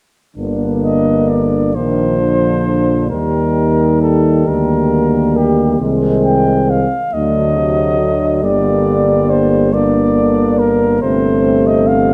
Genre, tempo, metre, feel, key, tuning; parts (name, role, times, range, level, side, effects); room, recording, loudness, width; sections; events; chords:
classical, hymn-like piece for brass band; 45 BPM (dotted quarters); 6/8; uneven beats, rubato; G minor; A4 = 444 Hz
warm French horn section; second line; 0.4-12.1 s; A3 to Eb4; -21 LUFS; equal
clear trombone; accompaniment; 0.4-12.1 s; C3 to Eb3; -24 LUFS; equal
warm euphonium; accompaniment; 0.4-12.1 s; F3 to Bb3; -20 LUFS; equal
warm tuba; bass; 0.4-12.1 s; G1 to Eb2; -20 LUFS; equal
dark cornet; melody; 0.8-12.1 s; G4 to G5; -20 LUFS; equal
moderate concert hall reverb, RT60 2.0 s; -14 LUFS; mono
0.4-12.1 A section
0.4 Gm; 1.8 Bb; 3.1 Ebmaj7; 5.8 Ab/C; 7.1 D7b9; 8.4 Gm; 11.0 Am7/G